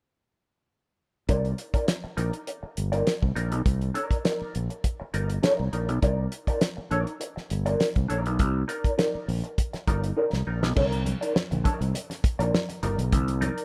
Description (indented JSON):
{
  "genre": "funk",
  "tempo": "101 BPM",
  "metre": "4/4",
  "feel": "straight",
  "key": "C minor",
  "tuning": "A4 = 439 Hz",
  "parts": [
    { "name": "mellow electric guitar", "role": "accompaniment", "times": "1.3-13.6 s", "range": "Eb4 to D5", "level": "-32 LUFS", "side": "equal", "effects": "wah, subtle chorus" },
    { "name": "overdriven fingered electric bass", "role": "bass", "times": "1.3-13.5 s", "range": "G1 to C2", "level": "-29 LUFS", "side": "equal", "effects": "tube saturation" },
    { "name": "damped 70s drum kit", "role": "drums", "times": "1.3-13.6 s", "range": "crash cymbal, hi-hat, kick drum, snare drum", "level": "-29 LUFS", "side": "equal", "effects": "none" },
    { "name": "congas", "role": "percussion", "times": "10.8-13.6 s", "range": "none", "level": "-38 LUFS", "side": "equal", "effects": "none" }
  ],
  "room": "light reverb",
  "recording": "none",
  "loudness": "-27 LUFS",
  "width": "mono",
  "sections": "1.3-10.8 A section; 10.8-13.6 B section",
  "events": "drum fill 10.2-10.8",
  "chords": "1.3 Cm9",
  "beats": "| 1.29 1.88 2.48 3.07 | 3.66 4.25 4.84 5.43 | 6.03 6.62 7.21 7.80 | 8.39 8.99 9.58 10.17 | 10.76 11.35 11.94 12.54 | 13.12"
}